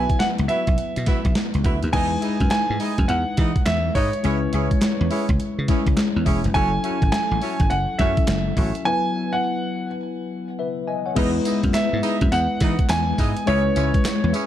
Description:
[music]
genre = R&B, new jack swing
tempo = 104 BPM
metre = 4/4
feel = swing 63% on 16ths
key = unclear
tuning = A4 = 440 Hz
[part]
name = clear grand piano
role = melody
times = 0.0-14.3 s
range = C#5 to G#5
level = -25 LUFS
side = right 1 dB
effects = none
[part]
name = tine electric piano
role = accompaniment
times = 0.0-14.5 s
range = F#3 to G#5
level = -25 LUFS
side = left 4 dB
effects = analog chorus
[part]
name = mellow horn section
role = stabs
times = 0.0-14.5 s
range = C#4 to E5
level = -30 LUFS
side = right 2 dB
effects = none
[part]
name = dry thumbed slap bass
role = bass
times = 0.0-14.3 s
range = E1 to E3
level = -23 LUFS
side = equal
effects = none
[part]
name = clean 12-bit digital drum machine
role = drums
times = 0.1-14.5 s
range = crash cymbal, hi-hat, kick drum, snare drum, tambourine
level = -23 LUFS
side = equal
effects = none
[part]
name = group handclap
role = percussion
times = 2.5-14.2 s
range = none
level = -38 LUFS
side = right 3 dB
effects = none
[sound]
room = light reverb, digital ambience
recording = dark, warm production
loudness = -19 LUFS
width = side -11 dB against mid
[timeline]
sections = 0.0-1.9 A section; 1.9-11.2 B section; 11.2-14.5 C section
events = break 8.9-11.2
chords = 0.0 Bsus4; 1.9 Emaj7; 4.2 C#m7; 6.5 F#m7; 8.9 Bsus4; 11.2 Emaj7; 13.5 C#m7

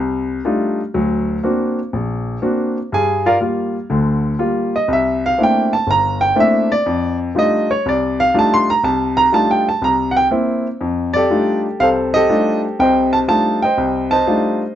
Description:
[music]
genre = jazz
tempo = 122 BPM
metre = 4/4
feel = swing 67% on 8ths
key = F mixolydian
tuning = A4 = 440 Hz
[part]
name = warm baby grand piano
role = solo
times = 0.0-14.8 s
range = G1 to C6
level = -14 LUFS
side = equal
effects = none
[sound]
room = light reverb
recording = nothing above 7.7 kHz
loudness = -14 LUFS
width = side -11 dB against mid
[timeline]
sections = 0.0-10.8 A section; 10.8-14.8 B section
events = grand piano solo 0.0-10.8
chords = 0.0 F13; 0.9 Daug7; 2.9 Gm7; 4.9 C13; 6.9 F13; 9.8 C7; 10.8 F13

